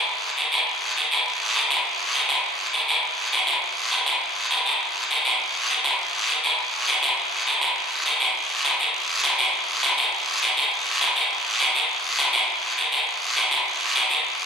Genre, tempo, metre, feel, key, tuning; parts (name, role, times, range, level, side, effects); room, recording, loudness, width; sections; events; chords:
latin; 203 BPM; 4/4; straight
guiro; percussion; 0.1-14.5 s; -19 LUFS; equal
wet cathedral reverb, RT60 4.8 s; recorded in a church or concert hall; -19 LUFS; side -6 dB against mid
0.0-8.4 A section; 8.4-14.5 B section